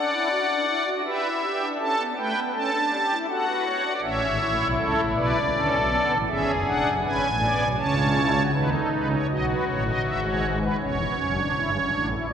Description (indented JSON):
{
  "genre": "classical, baroque-style 4-part fugue for pipe organ",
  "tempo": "80 BPM",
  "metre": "3/4",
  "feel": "straight",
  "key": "unclear",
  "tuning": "A4 = 442 Hz",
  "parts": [
    { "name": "pipe organ, strings celeste", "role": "solo", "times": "0.0-12.3 s", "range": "E1 to A5", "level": "-21 LUFS", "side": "equal", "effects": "none" }
  ],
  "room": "wet cathedral reverb, RT60 5.3 s",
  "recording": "recorded in a church or concert hall",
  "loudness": "-21 LUFS",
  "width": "side -8 dB against mid",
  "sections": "0.0-8.5 A section; 8.5-12.3 B section",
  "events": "none",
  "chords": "0.0 D; 1.1 Em; 1.8 A7; 3.3 D/F#; 4.0 A; 5.5 Bm; 6.3 E7; 7.8 A/C#; 8.5 B7; 10.0 E/G#; 10.8 A7/E",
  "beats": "0.31 1.05 | 1.79 2.54 3.29 | 4.04 4.79 5.53 | 6.28 7.04 7.79 | 8.54 9.29 10.04 | 10.79 11.53 12.28"
}